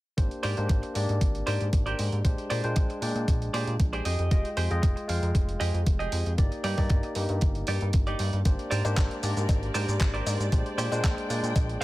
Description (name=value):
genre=nu-disco, nu disco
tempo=116 BPM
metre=4/4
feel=straight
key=unclear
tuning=A4 = 438 Hz
part: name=barky tine electric piano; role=accompaniment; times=0.2-11.8 s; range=Ab3 to G5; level=-33 LUFS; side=left 1 dB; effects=sidechain pumping, low-pass filter, ping-pong delay
part: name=fat analog bass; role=bass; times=0.2-11.8 s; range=F1 to Bb2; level=-29 LUFS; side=equal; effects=none
part: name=dusty soul sampler-style drum kit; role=drums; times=0.2-11.8 s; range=handclaps, hi-hat, shaker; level=-37 LUFS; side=right 2 dB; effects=overdrive, small room ambience
part: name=electronic kick drum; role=drums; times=0.2-11.7 s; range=none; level=-24 LUFS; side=equal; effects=small room ambience
part: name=clean electric guitar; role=riff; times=0.4-11.8 s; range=Eb4 to F5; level=-33 LUFS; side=right 2 dB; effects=lush chorus, ping-pong delay
part: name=muted studio string section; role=sustained chords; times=8.5-11.8 s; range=Ab3 to G5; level=-37 LUFS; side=equal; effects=sidechain pumping
part: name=cowbell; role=percussion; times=8.8-11.7 s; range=none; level=-38 LUFS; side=left 5 dB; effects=none
room=little or no reverb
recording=none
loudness=-24 LUFS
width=side -18 dB against mid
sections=0.2-11.8 A section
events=none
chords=0.2 Abmaj9#11; 2.2 Bb13; 4.1 Fm9; 6.4 Ebmaj7/G; 8.5 Abmaj9#11; 10.5 Bb13